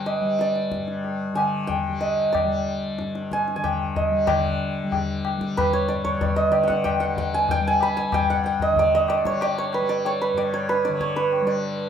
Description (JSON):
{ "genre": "indian classical, Hindustani", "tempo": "93 BPM", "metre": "4/4", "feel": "straight", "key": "G raga puriya dhanashri", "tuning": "A4 = 440 Hz", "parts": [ { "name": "santur", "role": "melody", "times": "0.0-11.9 s", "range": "B4 to B5", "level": "-22 LUFS", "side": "right 2 dB", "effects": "none" }, { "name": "tanpura", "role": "drone", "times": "0.0-11.9 s", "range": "G2 to G3", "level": "-28 LUFS", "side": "left 3 dB", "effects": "none" }, { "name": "tabla", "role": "percussion", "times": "0.1-11.6 s", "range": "none", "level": "-28 LUFS", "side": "left 6 dB", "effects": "none" } ], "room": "moderate large studio reverb, RT60 1.1 s", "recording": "band playing live in one room", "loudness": "-20 LUFS", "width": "side -8 dB against mid", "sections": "0.0-4.3 A section; 4.3-11.9 B section", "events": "speeding up 0.0-11.9", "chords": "none" }